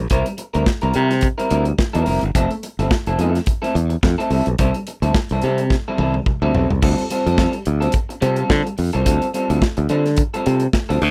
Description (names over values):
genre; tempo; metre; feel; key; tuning
disco; 107 BPM; 4/4; swing 56% on 16ths; unclear; A4 = 440 Hz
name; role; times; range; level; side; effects
modern bright fingered electric bass; bass; 0.0-11.1 s; F1 to D3; -21 LUFS; equal; none
electric guitar at the edge of break-up; accompaniment; 0.1-11.1 s; G3 to Bb4; -24 LUFS; equal; lush chorus
modern studio drum kit; drums; 0.1-11.1 s; crash cymbal, hi-hat, kick drum, snare drum, toms; -23 LUFS; equal; none
room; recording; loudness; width
little or no reverb; dry, close 1970s-style studio recording; -19 LUFS; mono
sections
0.0-6.8 A section; 6.8-11.1 B section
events
drum fill 5.7-6.8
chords
0.0 C7; 2.3 Fmaj7; 4.3 C6; 6.8 G9sus4/D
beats
| 0.11 0.67 1.23 1.79 | 2.35 2.91 3.47 4.03 | 4.59 5.15 5.71 6.26 | 6.82 7.38 7.94 8.50 | 9.06 9.62 10.18 10.74